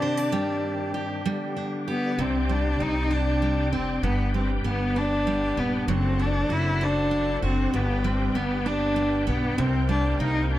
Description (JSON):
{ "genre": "pop", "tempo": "65 BPM (dotted quarters)", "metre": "6/8", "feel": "straight", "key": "C minor", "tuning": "A4 = 440 Hz", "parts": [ { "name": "warm cello", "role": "melody", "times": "0.0-10.6 s", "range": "B3 to E4", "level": "-26 LUFS", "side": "left 1 dB", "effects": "tape echo" }, { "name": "picked steel-string acoustic guitar", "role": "accompaniment", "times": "0.0-10.6 s", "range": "G2 to D5", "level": "-29 LUFS", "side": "right 3 dB", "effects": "none" }, { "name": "bright tonewheel organ", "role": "sustained chords", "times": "0.0-10.6 s", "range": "G2 to G5", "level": "-33 LUFS", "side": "left 1 dB", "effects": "chorus vibrato, fast rotary speaker" }, { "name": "upright bass", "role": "bass", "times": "2.2-10.6 s", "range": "Eb1 to C2", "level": "-26 LUFS", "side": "equal", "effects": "none" } ], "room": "light reverb, small room ambience", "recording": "none", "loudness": "-22 LUFS", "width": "side -14 dB against mid", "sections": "0.0-2.2 A section; 2.2-10.6 B section", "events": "none", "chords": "0.3 Cm/G; 1.3 G; 2.2 Csus2; 4.0 G; 5.9 D7/F#; 7.7 G; 9.6 C5" }